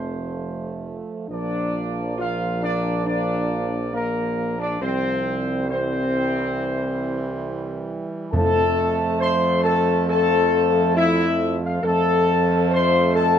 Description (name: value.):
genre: classical, ceremonial fanfare.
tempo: 68 BPM.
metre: 4/4.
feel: straight.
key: F major.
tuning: A4 = 440 Hz.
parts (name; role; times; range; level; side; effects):
mellow trumpet section; melody; 0.0-13.4 s; Bb4 to C6; -26 LUFS; right 1 dB; none.
dark French horn section; sustained chords; 0.0-13.4 s; Bb3 to C5; -23 LUFS; left 5 dB; none.
warm trombone section; sustained chords; 0.0-13.4 s; E3 to Bb3; -28 LUFS; right 3 dB; none.
warm tuba; bass; 0.0-13.4 s; F1 to F2; -26 LUFS; right 3 dB; none.
timpani; percussion; 8.3-9.6 s; F2; -25 LUFS; right 1 dB; none.
room: light reverb.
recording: close, detailed microphones.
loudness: -19 LUFS.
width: side -8 dB against mid.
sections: 0.0-13.4 A section.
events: none.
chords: 0.0 F; 1.3 Bb; 4.8 C; 8.3 F.